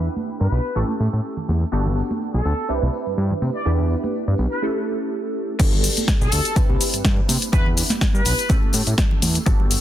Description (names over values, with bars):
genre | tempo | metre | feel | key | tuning
filtered disco house | 124 BPM | 4/4 | swing 54% on 16ths | unclear | A4 = 440 Hz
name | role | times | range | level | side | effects
funky polysynth comp | accompaniment | 0.0-9.8 s | A3 to B4 | -26 LUFS | right 1 dB | chorus, phaser, sidechain pumping, low-pass filter
fat analog bass | bass | 0.0-9.8 s | G1 to C3 | -21 LUFS | equal | tube saturation, sidechain pumping, low-pass filter
tambourine and congas | percussion | 0.0-9.8 s | none | -30 LUFS | right 3 dB | sidechain pumping on perc, low-pass filter on perc
warm trumpet section | melody | 0.4-8.6 s | A4 to D5 | -29 LUFS | left 1 dB | sidechain pumping, low-pass filter
electronic kick drum | drums | 5.6-9.6 s | none | -19 LUFS | equal | studio reverb
house drum kit | drums | 5.6-9.8 s | crash cymbal, hi-hat, shaker, snare drum | -23 LUFS | left 2 dB | sidechain pumping on hats, low-pass filter on hats, studio reverb, sidechain pumping on cymbals, low-pass filter on cymbals, sidechain pumping on perc, low-pass filter on perc, low-pass filter on snare
room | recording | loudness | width
light reverb, digital ambience | dense, heavily limited modern master | -18 LUFS | side -12 dB against mid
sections
0.0-5.6 A section; 5.6-9.8 B section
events
filter sweep 0.0-5.6; break 4.6-5.6; drop 5.6-9.8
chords
0.0 Em7; 0.8 A7; 1.7 Gmaj9; 2.7 Cmaj9; 3.7 Em7; 4.6 A7; 5.6 Gmaj9; 6.6 Cmaj9; 7.5 Em7; 8.5 A7